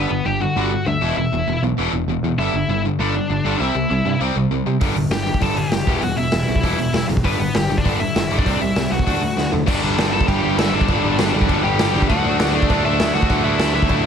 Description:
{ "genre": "punk rock", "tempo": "198 BPM", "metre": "4/4", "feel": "straight", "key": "G major", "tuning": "A4 = 440 Hz", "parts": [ { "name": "high-gain lead guitar", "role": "melody", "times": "0.0-14.1 s", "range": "B3 to A5", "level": "-23 LUFS", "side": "left 3 dB", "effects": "distortion" }, { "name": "distorted electric guitar", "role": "riff", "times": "0.0-14.1 s", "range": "E2 to D4", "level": "-24 LUFS", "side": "left 13 dB", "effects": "overdrive" }, { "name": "overdriven semi-hollow guitar", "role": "riff", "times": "0.0-14.1 s", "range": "E2 to D4", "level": "-24 LUFS", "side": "right 12 dB", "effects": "none" }, { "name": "picked electric bass", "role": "bass", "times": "0.0-14.1 s", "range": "E1 to D3", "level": "-24 LUFS", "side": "equal", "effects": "none" }, { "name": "raw garage drum kit", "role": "drums", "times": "4.8-14.0 s", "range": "crash cymbal, hi-hat, kick drum, snare drum, toms", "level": "-20 LUFS", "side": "equal", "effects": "none" }, { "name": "sludgy distorted guitar", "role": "riff", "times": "9.7-14.1 s", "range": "G2 to D4", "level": "-27 LUFS", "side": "equal", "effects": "none" } ], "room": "light reverb", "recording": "none", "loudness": "-16 LUFS", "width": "side -7 dB against mid", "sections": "0.0-9.7 A section; 9.7-14.1 B section", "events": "drum fill 9.4-9.7", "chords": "0.0 G; 1.0 E5; 2.4 G5; 3.6 C; 4.8 G5; 5.9 Em; 7.2 G; 8.5 C; 9.1 D; 9.7 G5; 12.1 D" }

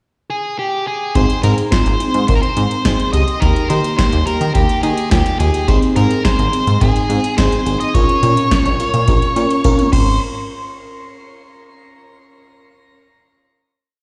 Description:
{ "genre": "synth-pop", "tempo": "106 BPM", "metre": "4/4", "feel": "straight", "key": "Ab major", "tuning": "A4 = 438 Hz", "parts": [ { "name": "octave-fuzz lead guitar", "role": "melody", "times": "0.3-10.2 s", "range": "G4 to Eb5", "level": "-22 LUFS", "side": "equal", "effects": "distortion, shimmer reverb" }, { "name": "FM electric piano with soft pad layer", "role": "accompaniment", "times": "1.2-9.9 s", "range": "Bb3 to Bb4", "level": "-22 LUFS", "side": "equal", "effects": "chorus, phaser, shimmer reverb" }, { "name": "chorused synth bass", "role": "bass", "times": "1.2-10.2 s", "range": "Ab1 to Eb3", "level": "-21 LUFS", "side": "equal", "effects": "none" }, { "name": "electro analog drum machine", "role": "drums", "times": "1.2-10.1 s", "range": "crash cymbal, hi-hat, kick drum, snare drum, toms", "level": "-20 LUFS", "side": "equal", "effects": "none" } ], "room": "wet recital hall reverb, RT60 1.6 s", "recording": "played on a big sound system in a bare room, stone room reverb", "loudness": "-15 LUFS", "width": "mono", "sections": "0.0-1.2 pickup bar; 1.2-10.2 verse; 10.2-12.5 final hit", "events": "drum fill 9.6-10.2", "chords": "0.0 N.C.; 1.2 Ab; 3.4 Eb; 5.7 Ab; 7.9 Bbm; 9.9 Ab; 10.2 N.C." }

